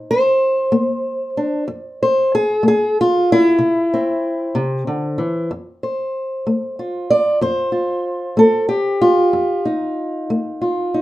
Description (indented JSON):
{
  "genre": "acoustic country blues, solo or duo",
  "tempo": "63 BPM (dotted quarters)",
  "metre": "12/8",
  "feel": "straight",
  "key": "unclear",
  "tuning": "A4 = 445 Hz",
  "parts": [
    { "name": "fingerpicked old ladder-braced acoustic guitar", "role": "solo", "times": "0.0-11.0 s", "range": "F2 to D5", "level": "-15 LUFS", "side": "equal", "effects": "none" }
  ],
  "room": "wet small room reverb, RT60 0.5 s",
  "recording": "rough home demo mix",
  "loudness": "-15 LUFS",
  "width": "side -16 dB against mid",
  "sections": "0.0-5.5 A section; 5.5-11.0 B section",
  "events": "steel-string acoustic guitar solo 0.0-5.5",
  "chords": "0.0 Bb; 1.7 F; 3.6 C; 5.5 F7"
}